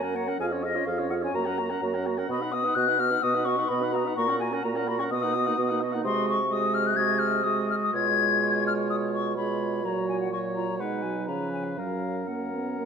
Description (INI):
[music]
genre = quick classical-period movement for wind quintet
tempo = 126 BPM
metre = 4/4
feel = rubato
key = F# major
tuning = A4 = 441 Hz
[part]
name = hollow concert flute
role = melody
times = 0.0-12.9 s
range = D#5 to G#6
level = -28 LUFS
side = left 6 dB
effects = none
[part]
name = mellow oboe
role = second line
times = 0.0-12.9 s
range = A#4 to A#5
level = -34 LUFS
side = left 3 dB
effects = none
[part]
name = clear clarinet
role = accompaniment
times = 0.0-12.9 s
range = C#4 to C#5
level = -33 LUFS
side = right 8 dB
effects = none
[part]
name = mellow French horn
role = accompaniment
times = 0.0-12.9 s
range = E#3 to E#4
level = -32 LUFS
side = right 2 dB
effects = none
[part]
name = dark bassoon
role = bass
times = 0.0-12.9 s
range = E#2 to C#3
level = -31 LUFS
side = right 3 dB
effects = none
[sound]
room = moderate scoring stage reverb, RT60 1.6 s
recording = none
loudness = -24 LUFS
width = side -6 dB against mid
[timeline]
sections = 0.0-12.9 A section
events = none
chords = 0.4 C#/E#; 1.3 F#; 2.3 B; 4.2 F#/A#; 5.1 Bmaj7; 6.0 G#7/B#; 7.9 C#7/B; 9.8 F#/A#; 10.8 G#m/B; 11.3 C#7; 11.8 F#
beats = | 0.37 0.85 1.33 1.81 | 2.28 2.76 3.22 3.69 | 4.16 4.63 5.11 5.58 | 6.05 6.51 6.98 7.45 | 7.94 8.42 8.89 9.37 | 9.84 10.31 10.79 11.28 | 11.77 12.28 12.77